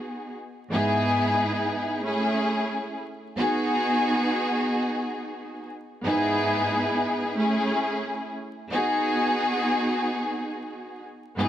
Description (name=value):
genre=hip hop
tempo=90 BPM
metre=4/4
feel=swing 57% on 16ths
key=G# minor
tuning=A4 = 439 Hz
part: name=dark studio string section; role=solo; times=0.0-11.5 s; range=G#2 to G#4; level=-24 LUFS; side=equal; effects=cassette tape
room=light reverb, studio reverb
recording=vinyl crackle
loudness=-23 LUFS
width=side -11 dB against mid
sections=0.0-11.5 A section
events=none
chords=0.0 G#m7; 0.7 Emaj7/G#; 2.0 Amaj7; 3.4 G#m7; 6.0 Emaj7/G#; 7.4 Amaj7; 8.7 G#m7